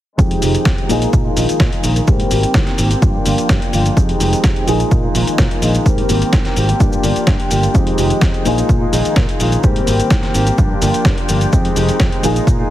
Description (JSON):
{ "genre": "filtered disco house", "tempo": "127 BPM", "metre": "4/4", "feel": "straight", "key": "F dorian", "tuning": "A4 = 441 Hz", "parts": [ { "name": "dark grand piano", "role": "accompaniment", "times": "0.2-12.7 s", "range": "F3 to Ab4", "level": "-21 LUFS", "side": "left 2 dB", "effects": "phaser, sidechain pumping, low-pass filter" }, { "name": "rich chamber violin section", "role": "sustained chords", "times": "0.2-12.7 s", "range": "Ab3 to Ab5", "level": "-24 LUFS", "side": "left 1 dB", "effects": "vintage 12-bit sampler grit, sidechain pumping, low-pass filter" }, { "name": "direct-recorded clean electric guitar", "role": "riff", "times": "0.2-12.7 s", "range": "Eb3 to G4", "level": "-22 LUFS", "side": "right 1 dB", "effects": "sidechain pumping, low-pass filter" }, { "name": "fingered electric bass", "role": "bass", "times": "0.2-12.6 s", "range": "F1 to Bb2", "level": "-18 LUFS", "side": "equal", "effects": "sidechain pumping, low-pass filter" }, { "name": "dusty soul sampler-style drum kit", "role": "drums", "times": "0.2-12.6 s", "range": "hi-hat, shaker, snare drum", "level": "-21 LUFS", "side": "equal", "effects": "sidechain pumping on perc, sidechain pumping on hats" }, { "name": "electronic kick drum", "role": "drums", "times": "0.2-12.6 s", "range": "none", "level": "-15 LUFS", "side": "equal", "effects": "none" } ], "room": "digital ambience", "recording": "heavily compressed radio sound, multiband compression", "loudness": "-12 LUFS", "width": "side -13 dB against mid", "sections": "0.2-12.7 A section", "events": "filter sweep 0.2-12.7", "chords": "0.2 Fm9; 0.9 Bb7sus4; 2.1 Abmaj9; 3.0 Gm7; 4.0 Fm9; 4.7 Bb7sus4; 5.9 Abmaj9; 6.8 Gm7; 7.7 Fm9; 8.5 Bb7sus4; 9.6 Abmaj9; 10.6 Gm7; 11.5 Fm9" }